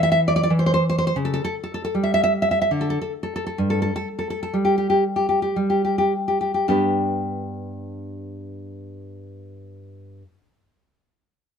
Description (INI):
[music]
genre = romantic piece for solo classical guitar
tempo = 52-98 BPM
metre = 3/4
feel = rubato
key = G major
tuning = A4 = 440 Hz
[part]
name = nylon-string guitar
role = solo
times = 0.0-10.2 s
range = G2 to E5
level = -20 LUFS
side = equal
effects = none
[sound]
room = light reverb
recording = minimal, uncompressed stereo recording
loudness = -19 LUFS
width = side -7 dB against mid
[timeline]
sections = 0.0-6.7 A section; 6.7-11.6 B section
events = slowing down 0.2-6.7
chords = 0.0 Cadd9; 1.2 C#dim; 2.7 N.C.; 6.7 G